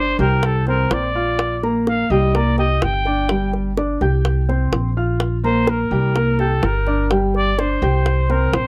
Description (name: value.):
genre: latin, Cuban son and guajira.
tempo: 126 BPM.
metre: 4/4.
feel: straight.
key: unclear.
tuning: A4 = 438 Hz.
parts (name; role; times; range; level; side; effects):
breathy trumpet; melody; 0.0-8.7 s; A4 to G5; -24 LUFS; equal; slapback echo.
dark grand piano; arpeggios; 0.0-8.7 s; G3 to G6; -23 LUFS; equal; none.
upright bass; bass; 0.0-8.7 s; G1 to C2; -22 LUFS; equal; none.
bongos; percussion; 0.2-8.7 s; none; -26 LUFS; equal; none.
room: light reverb.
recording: dry, close 1970s-style studio recording.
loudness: -18 LUFS.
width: mono.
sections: 0.0-8.7 A section.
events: trumpet solo 0.0-8.7.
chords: 0.4 Bbsus2; 2.3 C5; 3.3 G5; 4.3 Bbsus2; 6.2 C5; 7.1 G5; 8.1 Bbsus2.